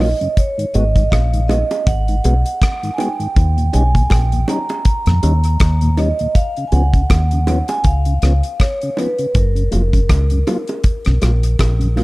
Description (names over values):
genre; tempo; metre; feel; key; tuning
roots reggae; 80 BPM; 4/4; swing 57% on 16ths; G# dorian; A4 = 440 Hz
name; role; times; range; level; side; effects
vibraphone with medium mallets; melody; 0.0-11.9 s; A#4 to A#5; -22 LUFS; right 2 dB; tape echo
mellow tonewheel organ; accompaniment; 0.0-12.0 s; D#2 to F#4; -23 LUFS; left 1 dB; overdrive, chorus vibrato, slow rotary speaker
deep dub fingered electric bass; bass; 0.0-12.0 s; E#1 to E#2; -15 LUFS; equal; none
damped 70s drum kit; drums; 0.0-12.0 s; hi-hat, kick drum, rim click; -16 LUFS; equal; none
bongos; percussion; 0.0-12.0 s; none; -25 LUFS; right 2 dB; none
room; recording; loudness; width
little or no reverb; dark, warm production; -13 LUFS; side -21 dB against mid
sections
0.0-12.0 A section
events
none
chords
0.4 G#m7; 3.4 D#7; 6.4 C#7; 9.4 F#maj7